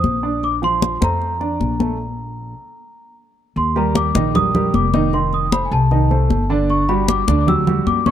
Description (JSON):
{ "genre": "Afro-Cuban jazz", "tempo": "153 BPM", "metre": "4/4", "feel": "straight", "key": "Bb major, Eb major from 3.6 s", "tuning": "A4 = 439 Hz", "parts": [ { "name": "large celesta", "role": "melody", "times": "0.0-8.1 s", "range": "Ab5 to Fb6", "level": "-21 LUFS", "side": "left 1 dB", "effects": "none" }, { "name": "warm baby grand piano", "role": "accompaniment", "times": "0.0-8.1 s", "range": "Db3 to Eb5", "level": "-21 LUFS", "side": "right 3 dB", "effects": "none" }, { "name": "upright bass", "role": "bass", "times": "0.0-8.1 s", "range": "F1 to Gb2", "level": "-20 LUFS", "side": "equal", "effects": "none" }, { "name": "congas", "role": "percussion", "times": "0.0-8.1 s", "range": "none", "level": "-21 LUFS", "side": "left 3 dB", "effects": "none" } ], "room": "light reverb", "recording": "dark, warm production", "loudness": "-15 LUFS", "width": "side -10 dB against mid", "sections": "0.0-3.6 A section; 3.6-8.1 B section", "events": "stop 2.0-3.6", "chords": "0.4 Bbmaj7; 3.6 Eb; 5.1 F9; 6.7 G5" }